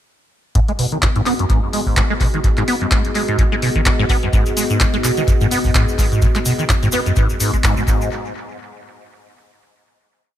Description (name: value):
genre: acid house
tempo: 127 BPM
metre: 4/4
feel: swing 56% on 16ths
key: G# minor pentatonic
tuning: A4 = 443 Hz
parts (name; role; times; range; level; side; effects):
- dark analog pad; sustained chords; 0.9-8.1 s; B3 to D#5; -24 LUFS; left 1 dB; chorus, sidechain pumping
- liquid acid bass; riff; 0.6-8.1 s; F#2 to B3; -19 LUFS; equal; phaser, tube saturation, ensemble chorus, sidechain pumping, tape echo
- electronic kick drum; drums; 0.6-8.0 s; none; -17 LUFS; equal; none
- punchy analog drum machine; drums; 0.6-7.7 s; handclaps, hi-hat; -23 LUFS; equal; overdrive, tape echo
- tube shaker; percussion; 4.3-8.1 s; none; -28 LUFS; left 1 dB; tape echo
room: light reverb, digital ambience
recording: echo-heavy mix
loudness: -14 LUFS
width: side -11 dB against mid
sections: 0.6-8.1 groove; 8.1-10.0 final hit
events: none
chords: 0.6 G#m7; 8.1 N.C.